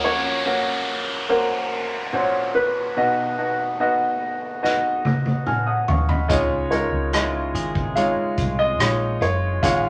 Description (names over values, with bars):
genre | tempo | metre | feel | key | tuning
pop ballad | 72 BPM | 4/4 | straight | Db major | A4 = 437 Hz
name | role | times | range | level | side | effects
warm concert grand piano | melody | 0.0-9.9 s | Bb4 to F5 | -27 LUFS | equal | none
clear grand piano | accompaniment | 0.0-9.9 s | Ab2 to F6 | -25 LUFS | equal | none
direct-recorded clean electric guitar | arpeggios | 0.0-0.2, 6.3-9.9 s | Ab2 to Ab4 | -34 LUFS | equal | spring reverb
downlifter and swell | sound effects | 0.0-9.9 s | none | -33 LUFS | equal | none
unplugged drum kit | drums | 4.6-9.8 s | hi-hat, kick drum, rim click, snare drum, toms | -26 LUFS | equal | none
vintage muted fingered electric bass | bass | 6.3-9.9 s | Gb1 to Db2 | -29 LUFS | equal | none
room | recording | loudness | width
wet studio reverb, RT60 0.6 s | none | -22 LUFS | mono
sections
0.0-9.9 A section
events
drum fill 4.6-6.3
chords
0.0 Gb; 3.0 Cb; 6.3 Dbadd9